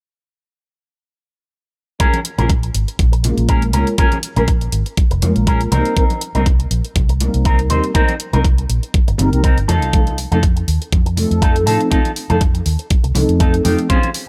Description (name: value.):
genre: nu-disco, nu disco.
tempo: 121 BPM.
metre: 4/4.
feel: swing 55% on 16ths.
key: Bb dorian.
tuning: A4 = 438 Hz.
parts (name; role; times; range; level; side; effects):
mellow synth brass; accompaniment; 2.0-14.0 s; F3 to Bb4; -23 LUFS; equal; chorus, phaser, analog delay.
electric guitar with an envelope filter; riff; 2.0-14.1 s; C4 to C5; -24 LUFS; equal; lush chorus.
electronic hi-hat; drums; 2.0-14.3 s; none; -29 LUFS; equal; overdrive.
electronic kick drum; drums; 2.0-14.0 s; none; -17 LUFS; equal; overdrive.
congas; percussion; 2.1-14.1 s; none; -27 LUFS; equal; none.
vintage muted fingered electric bass; bass; 2.4-13.7 s; F1 to A2; -20 LUFS; equal; none.
room: digital ambience.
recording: none.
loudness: -16 LUFS.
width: mono.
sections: 2.0-14.3 A section.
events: filter sweep on analog polysynth 2.0-14.3.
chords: 2.0 Bbm7; 5.7 Cm7; 9.7 F7.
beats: | 2.00 2.50 2.99 3.49 | 3.98 4.48 4.97 5.47 | 5.97 6.46 6.96 7.45 | 7.95 8.45 8.94 9.44 | 9.93 10.43 10.93 11.42 | 11.92 12.41 12.91 13.40 | 13.90.